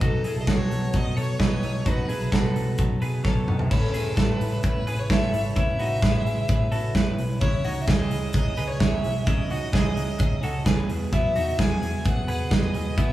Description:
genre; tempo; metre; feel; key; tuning
jangly indie pop; 130 BPM; 4/4; straight; unclear; A4 = 442 Hz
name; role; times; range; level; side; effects
clear violin; melody; 0.0-13.1 s; A4 to G#5; -30 LUFS; equal; none
semi-hollow electric guitar; accompaniment; 0.0-13.1 s; B2 to B4; -32 LUFS; right 3 dB; none
twelve-string electric guitar; arpeggios; 0.0-13.1 s; B3 to D#5; -32 LUFS; left 1 dB; none
vintage muted picked electric bass; bass; 0.0-13.1 s; G#1 to B2; -29 LUFS; equal; tube saturation
big rock drum kit; drums; 0.0-13.1 s; crash cymbal, hi-hat, kick drum, snare drum, toms; -24 LUFS; equal; none
room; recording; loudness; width
moderate large studio reverb, RT60 1.3 s; band playing live in one room, small room ambience; -21 LUFS; side -14 dB against mid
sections
0.0-3.7 A section; 3.7-13.1 B section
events
drum fill 3.2-3.7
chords
0.0 B7; 3.7 Aadd9; 7.4 C#madd9; 10.9 Eadd9

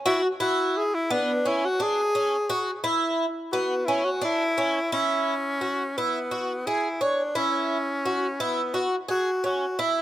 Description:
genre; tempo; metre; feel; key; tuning
progressive instrumental, progressive; 173 BPM (eighths); 7/8; straight; E mixolydian; A4 = 441 Hz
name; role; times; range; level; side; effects
bright tenor saxophone; melody; 0.1-10.0 s; B3 to G#4; -26 LUFS; left 1 dB; slapback echo
picked twelve-string acoustic guitar; arpeggios; 0.1-10.0 s; B3 to C#5; -25 LUFS; right 1 dB; slapback echo
room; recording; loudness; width
light reverb; recorded outdoors, with no room sound; -23 LUFS; side -12 dB against mid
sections
0.0-4.9 A section; 4.9-10.0 B section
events
tenor saxophone solo 0.0-4.9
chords
0.0 Eadd9; 4.9 Esus2

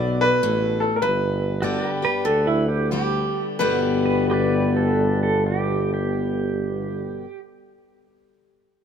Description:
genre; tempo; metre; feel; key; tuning
honky-tonk and classic country; 86-104 BPM; 4/4; swing 64% on 8ths; G major; A4 = 440 Hz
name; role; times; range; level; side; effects
bright upright piano; melody; 0.0-7.2 s; A4 to D5; -24 LUFS; right 1 dB; none
picked steel-string acoustic guitar; accompaniment; 0.0-7.3 s; G2 to G4; -25 LUFS; left 5 dB; none
pedal steel guitar; sustained chords; 0.0-7.2 s; F#4 to D5; -32 LUFS; right 4 dB; none
mellow tuba; bass; 0.0-7.2 s; G1 to D2; -25 LUFS; right 1 dB; none
pedal steel guitar; second line; 2.0-7.4 s; E4 to B4; -25 LUFS; right 4 dB; none
room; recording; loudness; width
light reverb; minimal, uncompressed stereo recording; -19 LUFS; side -8 dB against mid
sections
0.0-3.6 A section; 3.6-6.4 B section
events
slowing down 0.0-3.6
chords
0.0 D; 1.0 G

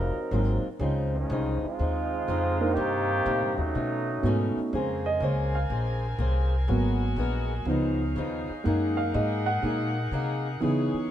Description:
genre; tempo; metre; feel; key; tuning
jazz; 122 BPM; 4/4; swing 67% on 8ths; Bb minor; A4 = 440 Hz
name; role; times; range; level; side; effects
mellow trombone section; second line; 0.0-4.5 s; Eb3 to Bb4; -29 LUFS; right 2 dB; none
fingerpicked swing-style acoustic guitar; accompaniment; 0.0-11.0 s; Ab2 to C5; -34 LUFS; left 5 dB; none
upright bass; bass; 0.0-11.0 s; F1 to Db3; -28 LUFS; equal; none
dark baby grand piano; accompaniment; 0.3-11.1 s; Db3 to Gb5; -29 LUFS; right 2 dB; none
mellow saxophone section; sustained chords; 4.7-11.1 s; C4 to Ab5; -36 LUFS; left 1 dB; none
room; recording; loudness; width
light reverb; minimal, uncompressed stereo recording; -24 LUFS; side -11 dB against mid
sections
0.0-4.7 A section; 4.7-11.1 B section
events
trombone section solo 0.0-4.7; grand piano solo 4.7-11.1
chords
0.0 Ab13; 0.8 Dbmaj9; 2.8 Cm7; 3.7 B9; 4.7 Bbm9; 6.7 Abm9; 7.7 Db9; 8.6 Gb69; 10.6 Dbm7

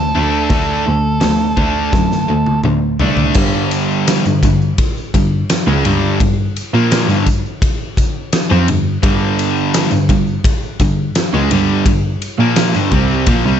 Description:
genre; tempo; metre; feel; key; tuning
classic rock; 85 BPM; 4/4; straight; unclear; A4 = 440 Hz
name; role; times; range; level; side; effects
octave-fuzz lead guitar; melody; 0.0-2.6 s; A4; -19 LUFS; right 2 dB; distortion, slapback echo
distorted electric guitar; riff; 0.0-13.6 s; G2 to D4; -19 LUFS; left 12 dB; overdrive
overdriven semi-hollow guitar; riff; 0.0-13.6 s; G2 to D4; -18 LUFS; right 11 dB; none
muted cello; bass; 0.0-13.6 s; C2 to Bb2; -18 LUFS; equal; none
big rock drum kit; drums; 0.5-13.4 s; crash cymbal, hi-hat, kick drum, ride cymbal, snare drum, toms; -17 LUFS; equal; none
tambourine; percussion; 3.7-13.5 s; none; -35 LUFS; right 8 dB; none
room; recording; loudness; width
little or no reverb; nothing above 7.9 kHz; -12 LUFS; side -9 dB against mid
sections
0.0-3.4 A section; 3.4-13.6 B section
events
drum fill 1.9-3.4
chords
0.0 D5; 3.4 G5

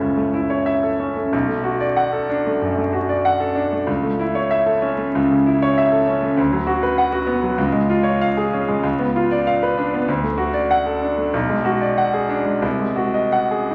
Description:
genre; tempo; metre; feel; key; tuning
classical, romantic character piece for solo piano; 96 BPM; 4/4; uneven beats, rubato; A major; A4 = 440 Hz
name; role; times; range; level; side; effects
warm grand piano; solo; 0.0-13.7 s; F#1 to F#5; -19 LUFS; equal; none
room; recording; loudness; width
wet recital hall reverb, RT60 1.3 s; vinyl crackle, nothing above 7.8 kHz; -19 LUFS; mono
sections
0.0-13.7 A section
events
none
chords
0.0 F#m7; 1.3 Bm7; 3.9 A/C#; 6.4 Bm/D; 7.6 C#; 8.8 C#7b9; 10.1 D; 11.3 G#m7b5/B; 12.6 G#7/B#

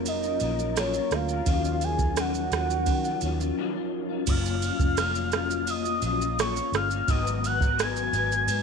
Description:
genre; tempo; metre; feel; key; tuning
indie pop, bedroom pop; 86 BPM; 4/4; straight; F# major; A4 = 440 Hz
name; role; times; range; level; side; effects
electric guitar through a small old amp; accompaniment; 0.0-8.6 s; G#2 to A#4; -31 LUFS; left 13 dB; ensemble chorus, warbly pitch drift
percussive tonewheel organ; accompaniment; 0.0-4.2 s; E#3 to A#4; -34 LUFS; right 12 dB; chorus vibrato, slow rotary speaker, cassette tape
vintage muted fingered electric bass; bass; 0.0-8.6 s; E#1 to D#3; -30 LUFS; equal; none
soft octave-layered synth lead; melody; 0.1-8.6 s; C#5 to G#6; -28 LUFS; equal; wide subtle chorus, slapback echo
soft vintage rhythm box; drums; 0.1-8.6 s; crash cymbal, kick drum, ride cymbal, rim click, shaker; -29 LUFS; right 3 dB; none
room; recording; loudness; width
light reverb; 1960s-style stereo with parts hard left and right; -24 LUFS; side -5 dB against mid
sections
0.0-4.3 A section; 4.3-8.6 A section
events
break 3.6-4.3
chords
0.0 F#maj7; 1.5 D#m9; 4.3 F#maj7; 7.1 G#m9

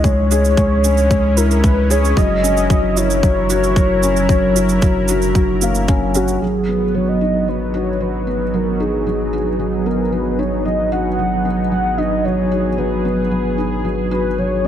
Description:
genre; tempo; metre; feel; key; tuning
piano and strings electronica; 113 BPM; 4/4; straight; G# minor; A4 = 440 Hz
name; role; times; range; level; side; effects
warm velvety synth lead; melody; 0.0-14.7 s; F#4 to F#5; -20 LUFS; left 1 dB; chorus, cassette tape
lush unison pad; sustained chords; 0.0-14.7 s; F#3 to B4; -23 LUFS; right 3 dB; chorus, sidechain pumping
felt-muted upright piano; riff; 0.0-14.7 s; F#3 to G#4; -19 LUFS; left 1 dB; none
warm sub bass; bass; 0.0-14.7 s; F#1 to C#2; -22 LUFS; equal; tube saturation, sidechain pumping
electronic kick drum; drums; 0.0-6.0 s; none; -16 LUFS; equal; none
shaker; drums; 0.0-6.4 s; none; -26 LUFS; right 9 dB; none
room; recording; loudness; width
moderate concert hall reverb, RT60 2.4 s; none; -14 LUFS; side -10 dB against mid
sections
0.0-6.4 A section; 6.4-14.7 B section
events
none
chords
0.0 C#m7; 2.2 F#7; 6.4 G#m7

